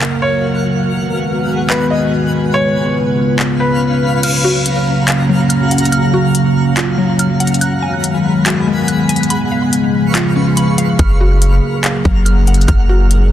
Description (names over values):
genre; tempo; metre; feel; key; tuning
hip hop, atmospheric cloud-rap; 142 BPM; 4/4; half-time; F# major; A4 = 438 Hz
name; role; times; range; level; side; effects
dark analog pad; sustained chords; 0.0-13.3 s; C#3 to E#5; -14 LUFS; equal; chorus, sidechain pumping
trap drum kit; drums; 0.0-13.2 s; crash cymbal, handclaps, hi-hat, kick drum; -19 LUFS; left 1 dB; none
twinkling granular texture; texture; 0.0-13.3 s; A#3 to E#6; -22 LUFS; left 1 dB; built-in reverb
felt-muted upright piano; melody; 0.2-4.2 s; B4 to D#5; -20 LUFS; equal; digital delay
mallet-like synth pluck; arpeggios; 4.2-13.3 s; F#3 to F#6; -20 LUFS; left 1 dB; chorus, digital delay
long sustained 808-style bass; bass; 11.0-13.3 s; F#1; -11 LUFS; equal; none
room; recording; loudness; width
light reverb; dense, heavily limited modern master; -11 LUFS; side -11 dB against mid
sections
0.0-4.2 A section; 4.2-13.3 B section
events
kick muted 4.2-11.0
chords
0.0 F#maj7; 0.9 G#m7; 2.5 C#7; 4.2 F#maj7; 7.6 G#m7; 9.3 C#7; 11.0 F#maj7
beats
0.01 0.43 | 0.85 1.27 1.70 2.12 | 2.54 2.96 3.39 3.81 | 4.23 4.66 5.08 5.50 | 5.92 6.34 6.77 7.19 | 7.61 8.04 8.46 8.88 | 9.30 9.73 10.15 10.57 | 10.99 11.42 11.84 12.26 | 12.68 13.11